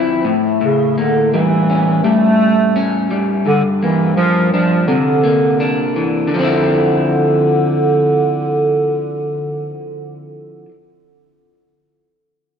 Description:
indie pop; 84 BPM; 4/4; swing 55% on 16ths; D minor; A4 = 441 Hz
mellow bass clarinet; melody; 0.0-9.9 s; C#3 to A3; -15 LUFS; right 2 dB; analog chorus, analog delay
electric guitar through a small old amp; accompaniment; 0.0-10.7 s; G2 to E4; -17 LUFS; left 2 dB; lush chorus, warbly pitch drift
wet plate reverb, RT60 2.9 s; dreamy mix soaked in reverb, cassette tape; -12 LUFS; side -7 dB against mid
0.0-6.3 A section; 6.3-9.2 B section
0.2 A7b9; 3.5 Gm7; 4.9 C9; 6.3 Dm9

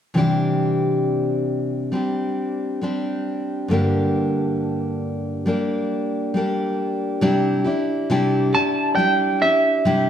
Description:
acoustic folk duo or small band; 68 BPM; 4/4; straight; C major; A4 = 435 Hz
picked steel-string acoustic guitar; accompaniment; 0.1-10.1 s; G2 to G4; -20 LUFS; left 1 dB
electric guitar at the edge of break-up; melody; 8.5-10.1 s; E5 to A5; -18 LUFS; right 2 dB; harmonic tremolo
wet large studio reverb, RT60 1.4 s; dark, warm production; -19 LUFS; side -9 dB against mid
0.2-7.2 A section; 7.2-10.1 B section
0.2 Cadd9; 3.7 Gm; 7.2 Cadd9

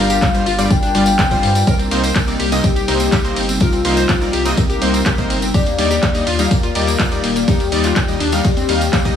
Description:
progressive house; 124 BPM; 4/4; straight; Eb major; A4 = 441 Hz
soft octave-layered synth lead; melody; 0.0-9.2 s; F4 to G5; -21 LUFS; left 4 dB; chorus, tremolo, tape echo
airy breathy pad; sustained chords; 0.0-9.2 s; C3 to D5; -24 LUFS; equal; chorus, sidechain pumping
analog pluck; arpeggios; 0.0-9.1 s; Eb3 to C5; -22 LUFS; left 2 dB; chorus, sidechain pumping, tape echo
supersaw stab; stabs; 0.0-9.2 s; G2 to F5; -22 LUFS; right 1 dB; sidechain pumping, tape echo
saturated sub bass; bass; 0.0-9.1 s; Eb1 to G2; -22 LUFS; left 1 dB; sidechain pumping
house drum kit; drums; 0.1-9.1 s; handclaps, hi-hat, ride cymbal; -23 LUFS; equal
tambourine; percussion; 0.1-9.1 s; -28 LUFS; right 1 dB
electronic kick drum; drums; 0.2-9.1 s; -16 LUFS; equal; overdrive
little or no reverb; small room ambience, faint mains hum; -13 LUFS; side -8 dB against mid
0.0-9.2 A section
0.0 Gm7; 1.7 Cm7; 5.5 Ebmaj7

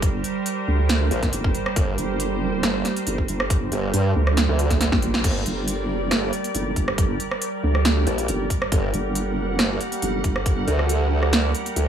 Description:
heavy wobble dubstep; 138 BPM; 4/4; swing 53% on 16ths, half-time; G harmonic minor; A4 = 435 Hz
evolving wavetable pad; sustained chords; 0.0-11.9 s; G3 to F#5; -27 LUFS; right 2 dB; chorus, built-in reverb, sidechain pumping
vowel-sweep wobble bass; bass; 0.0-10.7 s; G1 to D2; -23 LUFS; right 1 dB; chorus, overdrive
big-room dance drum kit; drums; 0.0-11.9 s; crash cymbal, hi-hat, rim click, snare drum; -25 LUFS; right 1 dB
electronic kick drum; drums; 0.0-10.6 s; -24 LUFS; equal
formant-sweep wobble bass; bass; 1.1-11.9 s; G1 to G2; -22 LUFS; right 1 dB; chorus, overdrive
light reverb; small room ambience; -20 LUFS; side -9 dB against mid
0.0-5.2 A section; 5.2-11.9 A section
drop 0.0-5.2, 5.2-11.9; drum fill 4.8-5.2; band accent 5.1
0.0 Gm

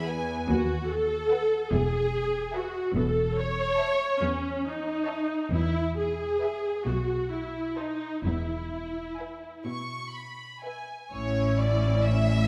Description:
classical, slow romantic movement for string orchestra; 41-50 BPM (dotted quarters); 6/8; rubato; E major; A4 = 439 Hz
rich studio violin section; melody; 0.0-11.1 s; F#5 to C#6; -43 LUFS; equal
rich studio violin section; second line; 0.0-12.5 s; B4 to G#5; -36 LUFS; equal
bright studio cello section; bass; 0.0-12.5 s; D#2 to B2; -34 LUFS; equal
rich studio viola section; accompaniment; 0.5-12.4 s; C#4 to C#5; -30 LUFS; equal
rich studio double bass section; bass; 0.5-12.5 s; E1 to D#2; -33 LUFS; equal
moderate scoring stage reverb, RT60 1.8 s; -28 LUFS; mono
0.0-11.1 A section; 11.1-12.5 B section
0.5 B7/D#; 1.7 E; 2.9 A/E; 5.5 E; 6.9 B7b9; 8.3 E; 11.1 A

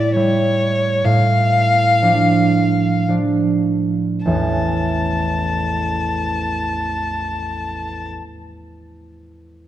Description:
classical, romantic duo for violin and harp; 48-71 BPM; 3/4; rubato; A major; A4 = 440 Hz
rich violin; melody; 0.0-8.1 s; C#5 to A5; -19 LUFS; left 2 dB
concert harp; accompaniment; 0.0-8.2 s; A1 to D5; -18 LUFS; right 2 dB
wet concert hall reverb, RT60 2.2 s; dark, warm production; -15 LUFS; side -12 dB against mid
0.0-4.3 A section; 4.3-7.6 B section
slowing down 0.0-4.3
0.0 A7; 1.0 Dm/A; 4.3 A

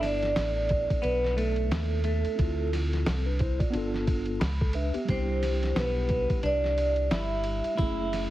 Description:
hip hop, jazz-hop; 89 BPM; 4/4; swing 59% on 16ths; A4 = 440 Hz
vibraphone with soft mallets; melody; 0.0-8.3 s; A4 to E5; -30 LUFS; right 2 dB; tape echo
semi-hollow electric guitar; second line; 0.0-8.3 s; A3 to E4; -35 LUFS; left 2 dB; plate reverb
mellow tine electric piano; accompaniment; 0.0-8.3 s; G3 to B5; -34 LUFS; left 1 dB; medium stereo tremolo, plate reverb
deep dub fingered electric bass; bass; 0.0-8.3 s; F#1 to D#2; -30 LUFS; equal
lo-fi sampler-style drum kit; drums; 0.0-8.3 s; hi-hat, kick drum, ride cymbal, snare drum; -31 LUFS; equal
moderate studio ambience, RT60 0.5 s; heavily compressed radio sound, vinyl crackle; -25 LUFS; side -14 dB against mid
0.0-8.3 A section
tine electric piano fill 4.1-5.1
0.0 G69; 2.4 Dm7; 3.7 G7; 5.1 Cmaj7; 7.8 F#m7

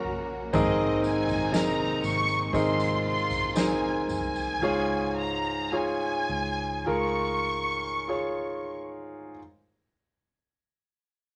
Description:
pop ballad; 46-60 BPM; 4/4; straight; Db major; A4 = 440 Hz
rich studio violin section; melody; 0.0-8.7 s; Eb5 to Db6; -32 LUFS; equal
rich studio violin section; second line; 0.0-0.5 s; Bb5; -49 LUFS; equal
warm concert grand piano; accompaniment; 0.0-9.4 s; Ab2 to Eb5; -30 LUFS; equal
warm symphonic string section; sustained chords; 0.0-4.6 s; C3 to Gb4; -40 LUFS; equal
vintage muted fingered electric bass; bass; 0.0-9.3 s; Ab1 to Db2; -38 LUFS; equal
soft-mallet drum kit; drums; 0.0-4.3 s; kick drum, snare drum, toms; -36 LUFS; equal
tambourine; percussion; 0.5-4.6 s; -47 LUFS; equal
moderate studio reverb, RT60 0.6 s; -27 LUFS; mono
0.0-9.4 A section
slowing down 0.5-9.4
0.0 Gb/Bb; 0.5 Abadd9; 4.6 Db

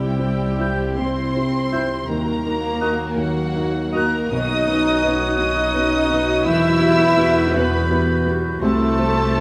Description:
cinematic, emotional film score for orchestra; 55 BPM (dotted quarters); 6/8; rubato; A4 = 443 Hz
dark symphonic violin section; melody; 0.0-9.4 s; F#5 to E6; -30 LUFS; equal
dark chamber violin section; second line; 0.0-9.4 s; F#4 to E5; -30 LUFS; equal
dark studio viola section; accompaniment; 0.0-9.4 s; C3 to F#4; -31 LUFS; equal
felt-muted upright piano; accompaniment; 0.0-9.4 s; E1 to C5; -28 LUFS; equal
warm French horn section; sustained chords; 0.0-9.4 s; F#3 to E4; -27 LUFS; equal
concert harp; arpeggios; 0.0-9.4 s; B2 to C5; -34 LUFS; equal
dark studio cello section; bass; 0.0-9.4 s; F#3 to E4; -27 LUFS; equal
rich symphonic double bass section; bass; 0.0-9.4 s; B1 to E2; -29 LUFS; equal
concert flute; second line; 0.6-9.4 s; E6 to G6; -30 LUFS; equal
mellow clarinet; second line; 0.6-9.4 s; E4 to F#4; -32 LUFS; equal
mellow cor anglais; second line; 0.6-9.4 s; B4 to E5; -32 LUFS; equal
moderate scoring stage reverb, RT60 1.9 s; -19 LUFS; mono
0.0-9.4 A section
0.0 C; 2.1 D#m; 4.3 Badd9; 6.5 Emadd9; 8.6 C

